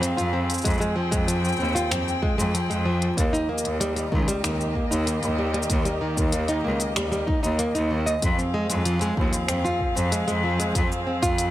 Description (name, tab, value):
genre	folktronica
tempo	95 BPM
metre	4/4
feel	straight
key	F minor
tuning	A4 = 442 Hz
part	muted string quartet	sustained chords	0.0-11.5 s	Eb3 to G5	-30 LUFS	left 1 dB	none
part	nylon-string guitar	arpeggios	0.0-11.5 s	Eb3 to Eb5	-26 LUFS	equal	vintage 12-bit sampler grit, tape echo
part	bright cello	bass	0.0-11.5 s	Db2 to F2	-26 LUFS	equal	none
part	organic electronic drum kit	drums	0.0-11.5 s	cabasa, finger snaps, hi-hat	-30 LUFS	left 2 dB	none
part	electronic kick drum	drums	0.6-11.4 s	none	-26 LUFS	equal	none
room	small room ambience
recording	none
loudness	-21 LUFS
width	side -14 dB against mid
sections	0.0-11.5 A section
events	none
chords	0.0 Fm; 3.2 Eb; 8.2 Fm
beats	0.02 | 0.65 1.28 1.91 2.54 | 3.17 3.81 4.44 5.07 | 5.70 6.33 6.96 7.59 | 8.23 8.86 9.49 10.12 | 10.75 11.38